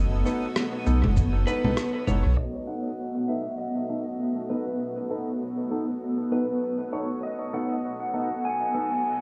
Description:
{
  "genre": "ambient dub",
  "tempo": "99 BPM",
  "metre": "4/4",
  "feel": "swing 57% on 16ths",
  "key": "B mixolydian",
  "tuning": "A4 = 441 Hz",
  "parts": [
    { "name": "electric slide guitar", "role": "melody", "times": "0.0-9.2 s", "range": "B4 to G#5", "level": "-34 LUFS", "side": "equal", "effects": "dub echo" },
    { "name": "granular cloud pad", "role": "sustained chords", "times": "0.0-9.2 s", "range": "B3 to F#5", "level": "-33 LUFS", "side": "equal", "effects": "built-in reverb" },
    { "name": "warm sub bass", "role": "bass", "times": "0.0-2.4 s", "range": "F#1 to B1", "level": "-25 LUFS", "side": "equal", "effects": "none" },
    { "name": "barky tine electric piano", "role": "stabs", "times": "0.3-8.9 s", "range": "B3 to A4", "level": "-35 LUFS", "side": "equal", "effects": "phaser, low-pass filter, dub echo" },
    { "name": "electronic shaker, rim click and congas", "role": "drums", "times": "0.3-2.2 s", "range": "none", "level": "-32 LUFS", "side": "equal", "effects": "low-pass filter on perc, small room ambience, low-pass filter on snare, dub echo" },
    { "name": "electronic kick drum", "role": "drums", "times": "1.2-1.3 s", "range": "none", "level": "-26 LUFS", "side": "equal", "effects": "small room ambience" }
  ],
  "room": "light reverb, digital ambience",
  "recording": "low-pass filter, small room ambience",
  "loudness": "-27 LUFS",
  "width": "mono",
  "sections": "0.0-2.4 A section; 2.4-9.2 B section",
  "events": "filter sweep on tine electric piano 2.4-9.2; filter sweep 2.4-9.2",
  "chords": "0.0 B7"
}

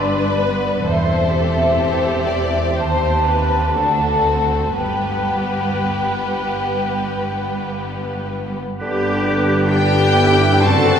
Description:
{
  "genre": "classical",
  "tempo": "57-69 BPM",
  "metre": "4/4",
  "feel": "rubato",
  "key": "G major",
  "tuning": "A4 = 440 Hz",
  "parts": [
    { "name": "warm studio violin section", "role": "melody", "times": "0.0-11.0 s", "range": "A4 to A5", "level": "-24 LUFS", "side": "left 3 dB", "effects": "none" },
    { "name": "mellow large flute ensemble", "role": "second line", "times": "0.0-11.0 s", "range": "G4 to A5", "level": "-22 LUFS", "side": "left 1 dB", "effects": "none" },
    { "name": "rich studio violin section", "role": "second line", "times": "0.0-11.0 s", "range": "B3 to B4", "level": "-25 LUFS", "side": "left 2 dB", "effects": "none" },
    { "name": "clear studio viola section", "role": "accompaniment", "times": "0.0-11.0 s", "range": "B3 to C5", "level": "-26 LUFS", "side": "equal", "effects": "none" },
    { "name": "rich studio cello section", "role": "bass", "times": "0.0-11.0 s", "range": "D2 to G4", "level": "-24 LUFS", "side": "right 1 dB", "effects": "none" },
    { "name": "rich studio double bass section", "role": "bass", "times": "0.0-11.0 s", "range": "E1 to Eb2", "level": "-23 LUFS", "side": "right 1 dB", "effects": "none" },
    { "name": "warm oboe", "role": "second line", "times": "8.8-11.0 s", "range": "B4 to C5", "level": "-26 LUFS", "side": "right 3 dB", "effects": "none" },
    { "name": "mellow bassoon", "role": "accompaniment", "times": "8.8-11.0 s", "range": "D3", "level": "-24 LUFS", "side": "right 1 dB", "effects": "none" },
    { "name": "warm French horn section", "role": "sustained chords", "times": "8.8-11.0 s", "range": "D4 to B4", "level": "-27 LUFS", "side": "left 1 dB", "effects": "none" },
    { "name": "warm trombone section", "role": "sustained chords", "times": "8.8-11.0 s", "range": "D3 to C4", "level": "-23 LUFS", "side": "right 2 dB", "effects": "none" },
    { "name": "mellow tuba", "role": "bass", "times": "8.8-11.0 s", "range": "F#1 to G1", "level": "-23 LUFS", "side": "right 1 dB", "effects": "none" },
    { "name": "dark clarinet", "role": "second line", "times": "9.7-11.0 s", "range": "G4 to A4", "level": "-22 LUFS", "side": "left 1 dB", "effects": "none" }
  ],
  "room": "wet church reverb, RT60 3.8 s",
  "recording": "recorded in a church or concert hall",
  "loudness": "-16 LUFS",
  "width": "side -8 dB against mid",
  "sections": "0.0-8.8 A section; 8.8-11.0 B section",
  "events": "none",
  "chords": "0.0 G; 0.9 C/E; 2.8 Cm/Eb; 3.8 D; 4.8 G"
}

